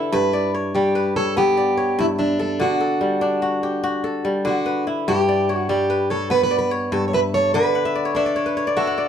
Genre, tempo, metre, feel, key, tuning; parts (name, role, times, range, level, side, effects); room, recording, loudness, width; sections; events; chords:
west african traditional; 97 BPM (dotted quarters); 12/8; straight; G lydian; A4 = 440 Hz
picked plugged-in steel-string acoustic guitar; melody; 0.0-9.1 s; D4 to C#5; -20 LUFS; right 1 dB
kora; arpeggios; 0.0-9.1 s; G2 to F#5; -21 LUFS; left 1 dB
wet studio reverb, RT60 0.9 s; band playing live in one room; -18 LUFS; side -8 dB against mid
0.0-9.1 A section
kora fill 7.7-9.1
0.1 G; 2.6 D; 5.1 G; 7.5 D